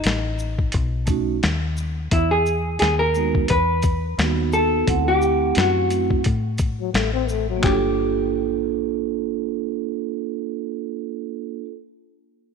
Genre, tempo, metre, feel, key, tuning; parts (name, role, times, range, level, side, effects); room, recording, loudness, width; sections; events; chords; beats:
hip hop, jazz-hop; 87 BPM; 4/4; swing 57% on 16ths; A4 = 438 Hz
hollow-body jazz guitar; melody; 0.0-11.6 s; Eb4 to B4; -22 LUFS; left 1 dB
boom bap sampler-style drum kit; drums; 0.0-7.8 s; handclaps, hi-hat, kick drum, shaker, snare drum; -23 LUFS; left 2 dB
deep dub fingered electric bass; bass; 0.1-11.6 s; G1 to A2; -24 LUFS; left 2 dB; transformer saturation
vibraphone with soft mallets; accompaniment; 1.1-11.7 s; G3 to F#5; -25 LUFS; right 15 dB
breathy trombone; second line; 6.8-7.8 s; F#3 to C4; -26 LUFS; left 15 dB
light reverb, digital ambience; 1960s-style stereo with parts hard left and right; -19 LUFS; side -5 dB against mid
0.0-7.6 A section; 7.6-10.4 B section
0.0 N.C.; 0.7 B7; 2.1 Emaj7; 4.9 D7; 7.6 Gm7
0.05 0.74 1.43 | 2.12 2.81 3.50 4.18 | 4.88 5.56 6.25 6.94 | 7.63 8.32 9.01 9.70